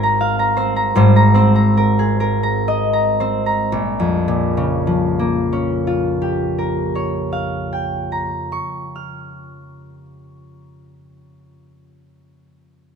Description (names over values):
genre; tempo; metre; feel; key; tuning
classical, solo harp piece; 55-85 BPM; 3/4; rubato; Bb dorian; A4 = 441 Hz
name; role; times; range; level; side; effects
concert harp; solo; 0.0-11.3 s; Ab1 to F6; -15 LUFS; equal; none
room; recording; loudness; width
light reverb; minimal, uncompressed stereo recording; -15 LUFS; side -6 dB against mid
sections
0.0-3.7 A section; 3.7-9.8 B section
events
slowing down 0.0-3.7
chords
0.0 Ab69; 1.0 Abadd9; 3.7 Bbm6